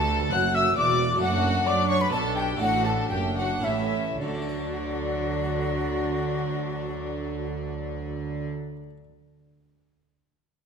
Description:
classical, baroque-style concerto movement with solo episodes; 102-137 BPM; 3/4; straight; D major; A4 = 440 Hz
mellow silver concert flute; melody; 0.0-8.5 s; F#4 to F#6; -28 LUFS; left 2 dB
rich chamber violin section; melody; 0.0-8.5 s; D5 to F#6; -34 LUFS; left 4 dB
rich chamber violin section; second line; 0.0-8.5 s; D4 to F#5; -31 LUFS; left 3 dB
dark chamber viola section; accompaniment; 0.0-8.5 s; F#3 to F#4; -34 LUFS; right 2 dB
harpsichord; accompaniment; 0.0-9.0 s; D2 to D5; -36 LUFS; right 2 dB
rich chamber cello section; bass; 0.0-8.5 s; D2 to F#3; -32 LUFS; right 4 dB
warm chamber double bass section; bass; 0.0-8.5 s; E1 to F#2; -32 LUFS; right 4 dB
wet scoring stage reverb, RT60 1.6 s; minimal, uncompressed stereo recording; -24 LUFS; side -6 dB against mid
0.0-4.2 A section; 4.2-7.7 B section
slowing down 0.6-4.2
0.0 D; 1.2 D/F#; 2.1 G/B; 2.6 D/A; 3.6 A7; 4.2 D
0.33 0.77 | 1.22 1.67 2.13 | 2.61 3.12 3.65 | 4.22 4.80 5.38 | 5.96 6.55 7.13

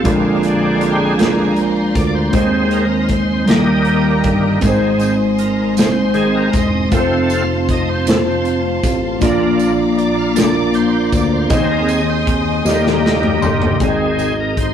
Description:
slow gospel; 52 BPM (dotted quarters); 6/8; straight; Ab major; A4 = 440 Hz
mellow tine electric piano; accompaniment; 0.0-14.7 s; Ab2 to C6; -16 LUFS; equal; slow stereo tremolo
bright studio string section; sustained chords; 0.0-13.8 s; Bb4 to Eb6; -25 LUFS; equal
bright tonewheel organ; sustained chords; 0.0-14.7 s; D3 to A5; -20 LUFS; right 1 dB; overdrive, chorus vibrato, slow rotary speaker
fingered electric bass; bass; 0.0-14.7 s; Fb1 to Eb2; -22 LUFS; equal
modern studio drum kit; drums; 0.1-14.7 s; hi-hat, kick drum, snare drum, toms; -18 LUFS; equal
tambourine; percussion; 4.6-14.5 s; -35 LUFS; right 6 dB
moderate stone room reverb, RT60 1.2 s; rough rehearsal-room recording, warm saturation; -13 LUFS; side -9 dB against mid
0.0-13.8 A section
tonewheel organ solo 0.0-13.8; drum fill 12.7-13.8; tine electric piano fill 12.7-13.8
0.1 Bb7; 2.3 Ab/Eb; 3.5 Eb; 4.6 Ab; 6.9 F; 9.2 Bb; 11.5 Ab/Eb; 12.7 Eb; 13.8 Ab
| 0.06 1.20 | 2.34 3.48 | 4.63 5.77 | 6.92 8.06 | 9.21 10.36 | 11.51 12.65 | 13.80

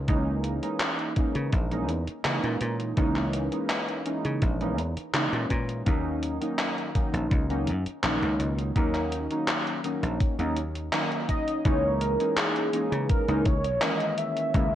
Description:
vaporwave; 83 BPM; 4/4; straight; C# dorian; A4 = 440 Hz
dry thumbed slap bass; bass; 0.0-14.8 s; A#1 to C#3; -29 LUFS; equal
warbly lo-fi synth keys; accompaniment; 0.1-14.8 s; D#3 to D#4; -29 LUFS; equal; analog chorus, tape echo
electronic kick drum; drums; 0.1-14.7 s; -26 LUFS; equal
gated 80s digital drum machine; drums; 0.1-14.7 s; handclaps, hi-hat; -30 LUFS; equal; gated reverb
warm velvety synth lead; melody; 11.3-14.8 s; G#4 to E5; -28 LUFS; equal; chorus, tape echo
light reverb, digital ambience; cassette tape; -24 LUFS; side -11 dB against mid
0.0-11.7 A section; 11.7-14.8 B section
band accent 10.9-11.3
0.1 C#m69; 5.9 D#m7; 11.7 C#m69
| 0.09 0.81 1.53 2.25 | 2.98 3.70 4.42 5.14 | 5.87 6.59 7.31 8.04 | 8.76 9.48 10.21 10.93 | 11.65 12.37 13.10 13.82 | 14.54

